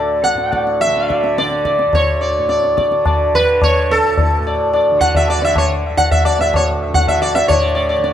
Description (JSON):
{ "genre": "indian classical, Hindustani", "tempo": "108 BPM", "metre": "5/4", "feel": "straight", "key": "D raga yaman", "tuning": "A4 = 440 Hz", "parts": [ { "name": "sitar", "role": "melody", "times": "0.0-8.1 s", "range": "A4 to F#5", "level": "-14 LUFS", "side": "equal", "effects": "tape echo" }, { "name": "tanpura", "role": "drone", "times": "0.0-8.1 s", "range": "D2 to D3", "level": "-24 LUFS", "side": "right 2 dB", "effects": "none" }, { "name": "tabla", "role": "percussion", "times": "0.2-8.1 s", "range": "none", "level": "-18 LUFS", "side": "left 2 dB", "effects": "none" } ], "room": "moderate studio reverb, RT60 0.5 s", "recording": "dark, warm production", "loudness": "-13 LUFS", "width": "side -10 dB against mid", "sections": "0.0-7.5 A section", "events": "speeding up 0.0-8.1", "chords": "none", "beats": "0.24 0.80 1.37 | 1.94 2.50 3.06 3.62 4.18 | 4.74 5.29 5.85 6.40 6.95 | 7.50 8.04" }